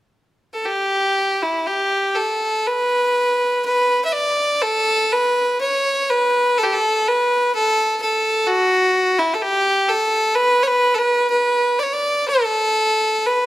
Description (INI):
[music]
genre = celtic folk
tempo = 61 BPM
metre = 4/4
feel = rubato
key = unclear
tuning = A4 = 439 Hz
[part]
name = clear fiddle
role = solo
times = 0.5-13.5 s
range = E4 to E5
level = -16 LUFS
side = equal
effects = none
[sound]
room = moderate recital hall reverb, RT60 1.5 s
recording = none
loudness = -16 LUFS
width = side -15 dB against mid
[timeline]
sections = 0.6-13.5 A section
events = none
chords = none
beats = | 0.61 1.63 2.63 3.62 | 4.60 5.59 6.56 7.51 | 8.46 9.40 10.34 11.29 | 12.26 13.25